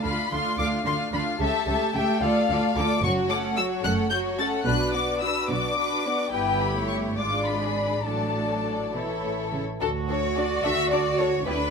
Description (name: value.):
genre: quick classical-period movement for string orchestra.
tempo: 67-75 BPM (dotted quarters).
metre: 6/8.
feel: rubato.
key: D major from 3.0 s.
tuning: A4 = 440 Hz.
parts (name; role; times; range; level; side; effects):
rich studio violin section; melody; 0.0-11.5 s; G4 to A6; -28 LUFS; left 5 dB; none.
clear studio violin section; second line; 0.0-11.7 s; D4 to F#5; -28 LUFS; left 4 dB; none.
rich studio viola section; accompaniment; 0.0-11.5 s; E3 to G4; -29 LUFS; right 2 dB; none.
rich studio cello section; bass; 0.0-11.7 s; F#2 to F#4; -31 LUFS; right 3 dB; none.
rich studio double bass section; bass; 0.0-11.7 s; F#1 to D2; -32 LUFS; right 3 dB; none.
room: moderate recital hall reverb, RT60 1.3 s.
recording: close, detailed microphones.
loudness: -22 LUFS.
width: side -5 dB against mid.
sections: 0.0-9.8 A section; 9.8-11.7 B section.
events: none.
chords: 0.0 Dm; 1.4 A7; 2.2 Dm; 3.0 F#m; 4.7 Bm; 6.3 Em/G; 7.2 G#dim7; 8.1 D/A; 8.9 A; 9.8 D.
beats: 0.59 | 1.40 2.22 | 3.03 3.84 | 4.66 5.49 | 6.32 7.17 | 8.05 8.94 | 9.81 10.64 | 11.47.